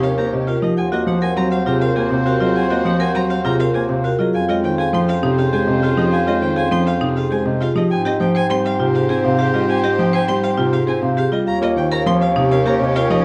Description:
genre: classical, minimalist pattern music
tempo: 101 BPM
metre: 3/4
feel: straight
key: Ab major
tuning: A4 = 439 Hz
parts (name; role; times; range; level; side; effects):
- vibraphone with soft mallets; melody; 0.0-13.2 s; G4 to G5; -24 LUFS; equal; none
- warm oboe; second line; 0.0-13.2 s; C5 to Db5; -30 LUFS; equal; none
- warm concert grand piano; accompaniment; 0.0-13.2 s; C3 to C4; -22 LUFS; equal; none
- rich studio violin section; sustained chords; 0.0-13.2 s; C4 to G4; -30 LUFS; equal; none
- marimba with hard mallets; arpeggios; 0.0-13.2 s; C4 to C5; -25 LUFS; equal; none
- rich violin; arpeggios; 0.0-13.2 s; Eb5 to C6; -31 LUFS; equal; none
- clear bass clarinet; bass; 0.0-13.2 s; Eb2 to Ab2; -26 LUFS; equal; none
room: wet large studio reverb, RT60 0.9 s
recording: dark, warm production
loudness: -18 LUFS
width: mono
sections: 0.0-13.2 A section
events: none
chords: 0.0 Eb13; 0.8 Ab13/Eb; 4.3 Dbmaj9/F; 7.9 Abmaj7; 11.5 Eb13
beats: 0.18 | 0.77 1.37 1.96 | 2.56 3.15 3.74 | 4.34 4.93 5.53 | 6.12 6.71 7.31 | 7.90 8.50 9.09 | 9.68 10.28 10.87 | 11.47 12.06 12.65 | 13.25

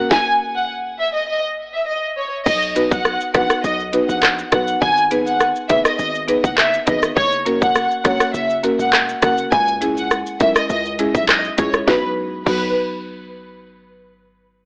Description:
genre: dancehall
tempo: 102 BPM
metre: 4/4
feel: straight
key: B major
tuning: A4 = 440 Hz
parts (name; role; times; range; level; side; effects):
- buzzing marimba with medium mallets; accompaniment; 0.0-12.7 s; F#3 to C#5; -24 LUFS; equal; none
- hard-hitting 808-style bass; bass; 0.0-12.7 s; E1 to C#2; -32 LUFS; equal; none
- warm studio violin section; melody; 0.1-12.7 s; B4 to G#5; -22 LUFS; equal; tape echo
- island pop drum kit; drums; 0.1-12.6 s; crash cymbal, handclaps, hi-hat, kick drum, rim click, shaker, snare drum; -20 LUFS; equal; none
room: digital ambience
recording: dry, gritty hardware recording, cassette tape, AM radio sound, faint mains hum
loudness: -18 LUFS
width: mono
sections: 0.0-2.5 A section; 2.5-11.9 B section; 11.9-14.2 C section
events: none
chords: 0.1 N.C.; 2.5 B; 4.8 G#m; 7.2 F#; 9.5 C#m; 11.9 B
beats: | 0.11 0.70 1.29 1.88 | 2.46 3.05 3.64 4.23 | 4.82 5.41 5.99 6.58 | 7.17 7.76 8.35 8.93 | 9.52 10.11 10.70 11.29 | 11.88 12.46

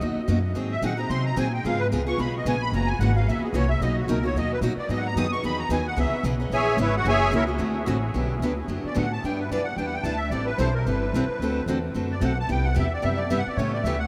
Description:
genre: acoustic string swing (jazz manouche)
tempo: 221 BPM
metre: 4/4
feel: swing 56% on 8ths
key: B major, G major from 8.1 s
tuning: A4 = 440 Hz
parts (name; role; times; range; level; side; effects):
- picked steel-string acoustic guitar; accompaniment; 0.0-13.9 s; B2 to B4; -29 LUFS; equal; none
- upright bass; bass; 0.0-14.1 s; F#1 to B#2; -29 LUFS; equal; none
- musette accordion; melody; 0.7-14.1 s; E4 to D#6; -30 LUFS; equal; none
room: wet huge ambient reverb, RT60 8.1 s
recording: in a vast, echoing space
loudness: -25 LUFS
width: mono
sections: 0.0-8.1 A section; 8.1-14.1 A section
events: accordion solo 0.0-8.1, 8.1-14.1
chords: 0.0 Bmaj7; 0.6 G#7; 1.6 C#7; 2.7 F#7; 3.8 Bmaj7; 4.9 G#m7; 6.0 C#m7; 7.1 F#9; 7.6 D7; 8.1 Gmaj9; 9.2 Em7; 10.3 Am9; 11.4 D7; 12.5 Cmaj7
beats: 0.02 0.29 | 0.56 0.83 1.10 1.38 | 1.65 1.92 2.19 2.46 | 2.73 3.00 3.27 3.54 | 3.81 4.09 4.36 4.63 | 4.90 5.17 5.44 5.71 | 5.98 6.25 6.52 6.79 | 7.06 7.33 7.61 7.88 | 8.15 8.42 8.69 8.96 | 9.23 9.51 9.78 10.05 | 10.32 10.59 10.87 11.14 | 11.41 11.68 11.95 12.22 | 12.50 12.77 13.04 13.31 | 13.58 13.85

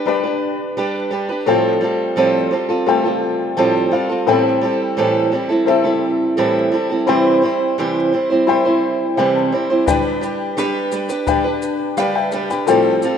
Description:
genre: acoustic pop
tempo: 86 BPM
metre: 4/4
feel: straight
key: G mixolydian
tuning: A4 = 445 Hz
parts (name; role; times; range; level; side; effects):
- felt-muted upright piano; accompaniment; 0.0-13.2 s; A3 to B5; -20 LUFS; left 8 dB; none
- picked steel-string acoustic guitar; accompaniment; 0.0-13.2 s; A2 to C5; -16 LUFS; right 2 dB; none
- jazz brush drum kit; drums; 9.9-13.2 s; kick drum, rim click, shaker; -28 LUFS; equal; none
room: moderate lush hall reverb, RT60 2.2 s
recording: rough home demo mix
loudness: -15 LUFS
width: side -8 dB against mid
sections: 0.0-13.2 A section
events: felt piano fill 3.2-4.3, 8.8-9.9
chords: 0.0 G; 1.5 Fadd9/A; 4.3 Am7; 7.1 C; 9.9 G; 12.7 Fadd9/A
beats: 0.07 0.78 | 1.48 2.18 2.88 3.58 | 4.28 4.98 5.68 6.38 | 7.08 7.78 8.48 9.18 | 9.88 10.58 11.28 11.98 | 12.68

